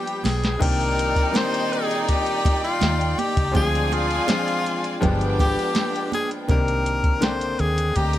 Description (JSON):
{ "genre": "lush 1970s-style soul", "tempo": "82 BPM", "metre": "4/4", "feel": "straight", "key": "C minor", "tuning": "A4 = 440 Hz", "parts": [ { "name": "clear tenor saxophone", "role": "melody", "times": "0.0-8.2 s", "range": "F4 to C5", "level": "-25 LUFS", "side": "left 2 dB", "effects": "none" }, { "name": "warm studio violin section", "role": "second line", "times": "0.0-8.2 s", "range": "G3 to Bb5", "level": "-28 LUFS", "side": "equal", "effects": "none" }, { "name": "clear baby grand piano", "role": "accompaniment", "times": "0.0-8.2 s", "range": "D3 to G5", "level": "-28 LUFS", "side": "left 2 dB", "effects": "none" }, { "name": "soft vintage rhythm box", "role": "drums", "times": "0.1-8.2 s", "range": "crash cymbal, hi-hat, kick drum, snare drum", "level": "-23 LUFS", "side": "equal", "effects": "none" }, { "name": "vintage muted fingered electric bass", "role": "bass", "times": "0.2-8.2 s", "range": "G1 to Eb2", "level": "-25 LUFS", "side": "equal", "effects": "none" }, { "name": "congas", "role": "percussion", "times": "0.2-7.4 s", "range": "none", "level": "-32 LUFS", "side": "right 8 dB", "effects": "none" }, { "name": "clear horn section", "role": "stabs", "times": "0.6-8.2 s", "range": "Bb2 to Ab4", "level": "-30 LUFS", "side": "right 2 dB", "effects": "none" } ], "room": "small room ambience", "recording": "none", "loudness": "-19 LUFS", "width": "side -13 dB against mid", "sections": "0.6-8.2 A section", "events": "drum fill 0.0-0.6", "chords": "0.0 G7; 0.6 Cm9; 3.6 Dm7b5; 5.0 G7b9; 6.5 Cm9", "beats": "| 0.61 1.35 2.08 2.82 | 3.56 4.29 5.03 5.76 | 6.49 7.23 7.96" }